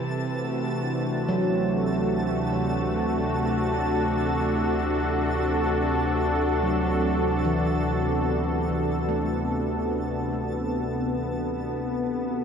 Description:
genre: ambient.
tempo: free time.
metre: none.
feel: none.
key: unclear.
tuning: A4 = 440 Hz.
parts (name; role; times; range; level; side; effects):
warm analog pad; sustained chords; 0.0-12.4 s; C3 to B4; -25 LUFS; equal; chorus.
bowed-like drone; drone; 0.0-12.4 s; C3 to E3; -36 LUFS; right 1 dB; none.
twinkling granular texture; texture; 0.0-12.4 s; A4 to A5; -39 LUFS; right 1 dB; built-in reverb.
deep rumbling drone; bass; 1.6-12.4 s; D2; -32 LUFS; equal; built-in reverb.
handpan; arpeggios; 1.3-11.1 s; E3 to A3; -30 LUFS; right 2 dB; diffuse ambient delay.
room: wet concert hall reverb, RT60 2.0 s.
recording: none.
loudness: -23 LUFS.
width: side -7 dB against mid.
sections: 0.0-12.4 A section.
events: fade-in on synth drone 0.0-12.4; fade-out on synth texture 0.0-12.4.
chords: 0.1 D7.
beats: free time.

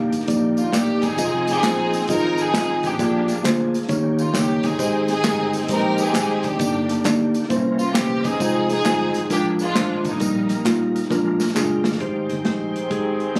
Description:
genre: uptempo gospel.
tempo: 133 BPM.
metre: 4/4.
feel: swing 65% on 8ths.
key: Eb major.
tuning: A4 = 441 Hz.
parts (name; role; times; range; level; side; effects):
rich studio string section; melody; 0.0-10.9 s; G3 to Bb4; -26 LUFS; equal; none.
mellow tine electric piano; accompaniment; 0.0-13.4 s; G2 to F5; -24 LUFS; equal; none.
overdriven tonewheel organ; sustained chords; 0.0-13.4 s; D3 to G5; -34 LUFS; equal; slow rotary speaker, chorus vibrato.
fingered electric bass; bass; 0.0-13.4 s; Eb1 to Bb2; -32 LUFS; equal; none.
modern studio drum kit; drums; 0.1-13.4 s; hi-hat, kick drum, snare drum; -28 LUFS; equal; none.
tambourine and handclaps; percussion; 0.1-11.9 s; none; -34 LUFS; equal; none.
muted French horn section; sustained chords; 12.0-13.4 s; Eb3 to C4; -33 LUFS; equal; none.
warm alto saxophone; melody; 12.5-13.4 s; Ab4 to C5; -31 LUFS; equal; none.
room: little or no reverb.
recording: recorded on a phone in the room, club reverb.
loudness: -21 LUFS.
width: mono.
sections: 0.0-12.0 A section; 12.0-13.4 B section.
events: drum fill 11.1-12.0.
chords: 0.0 Ebmaj7; 1.2 Fm7; 3.0 Bb7; 3.9 Eb7; 4.8 Abmaj7; 6.6 Ebmaj7/G; 7.5 C7b9; 8.4 Fm7; 9.3 Bb7; 10.2 Eb/Bb; 11.1 Bb7; 12.0 Abmaj7.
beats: 0.29 0.74 | 1.19 1.64 2.09 2.54 | 2.99 3.44 3.89 4.34 | 4.79 5.25 5.70 6.15 | 6.60 7.05 7.50 7.95 | 8.40 8.85 9.30 9.75 | 10.20 10.65 11.10 11.56 | 12.01 12.46 12.91 13.36.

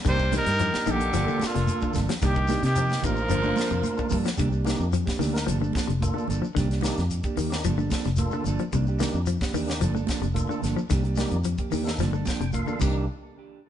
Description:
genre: afrobeat.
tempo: 110 BPM.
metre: 4/4.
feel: straight.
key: C dorian.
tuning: A4 = 441 Hz.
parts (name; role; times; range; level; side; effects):
semi-hollow electric guitar; arpeggios; 0.0-13.0 s; C3 to G3; -32 LUFS; left 9 dB; tremolo.
shekere; percussion; 0.0-12.9 s; none; -36 LUFS; left 2 dB; none.
breathy trumpet; melody; 0.1-4.1 s; F4 to C5; -28 LUFS; equal; none.
raspy tenor saxophone; second line; 0.1-4.1 s; Bb2 to G3; -33 LUFS; right 4 dB; none.
tonewheel organ; accompaniment; 0.1-13.1 s; Bb3 to G5; -35 LUFS; left 1 dB; overdrive, fast rotary speaker.
mellow electric guitar; stabs; 0.1-13.0 s; Eb3 to A4; -32 LUFS; right 5 dB; tape echo.
fingered electric bass; bass; 0.1-13.1 s; F1 to C3; -27 LUFS; equal; none.
tight funk drum kit; drums; 0.1-12.9 s; crash cymbal, hi-hat, kick drum, snare drum; -30 LUFS; equal; none.
congas; percussion; 0.1-12.9 s; none; -34 LUFS; right 5 dB; none.
room: moderate stone room reverb, RT60 1.1 s.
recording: band playing live in one room, nothing above 10.5 kHz.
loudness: -23 LUFS.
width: side -10 dB against mid.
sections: 0.0-4.4 A section; 4.4-13.1 B section.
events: tonewheel organ fill 12.0-13.1; drum fill 12.5-13.1.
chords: 0.1 Cm9; 1.1 Gm9; 2.2 Cm9; 3.3 Gm9; 4.4 Cm9; 5.5 Gm9; 6.6 Cm9; 7.6 Gm9; 8.7 Cm9; 9.8 Gm9; 10.9 Cm9; 12.0 Gm9; 12.8 Cm9; 13.1 N.C..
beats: | 0.05 0.59 1.14 1.68 | 2.22 2.76 3.30 3.85 | 4.39 4.93 5.47 6.01 | 6.56 7.10 7.64 8.19 | 8.73 9.27 9.82 10.36 | 10.90 11.45 11.99 12.54.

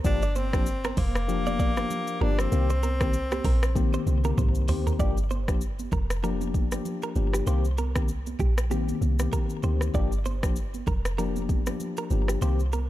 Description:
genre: afrobeats.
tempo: 97 BPM.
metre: 4/4.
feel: swing 58% on 16ths.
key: unclear.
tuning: A4 = 440 Hz.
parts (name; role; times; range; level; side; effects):
tine electric piano; accompaniment; 0.0-12.6 s; Eb3 to G4; -31 LUFS; left 6 dB; phaser.
deep log drum bass; bass; 0.0-12.9 s; F1 to D2; -27 LUFS; equal; none.
afro-pop drum kit; drums; 0.0-12.9 s; hi-hat, kick drum, rim click, shaker, toms; -28 LUFS; equal; none.
breathy tenor saxophone; melody; 0.1-4.4 s; Bb3 to D4; -31 LUFS; left 2 dB; ping-pong delay.
direct-recorded clean electric guitar; riff; 0.2-12.9 s; G4 to D5; -36 LUFS; right 5 dB; spring reverb, ping-pong delay.
congas; percussion; 0.4-12.9 s; none; -38 LUFS; right 8 dB; none.
room: little or no reverb.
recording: dark, warm production.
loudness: -24 LUFS.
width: side -14 dB against mid.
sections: 0.0-5.0 A section; 5.0-12.9 B section.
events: drum fill 3.8-5.0.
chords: 0.0 Gm7; 2.5 Cm7; 5.0 Gm7; 7.5 Cm7; 9.9 Gm7.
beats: | 0.05 0.66 1.28 1.90 | 2.52 3.14 3.76 4.38 | 4.99 5.61 6.23 6.85 | 7.47 8.09 8.71 9.32 | 9.94 10.56 11.18 11.80 | 12.42.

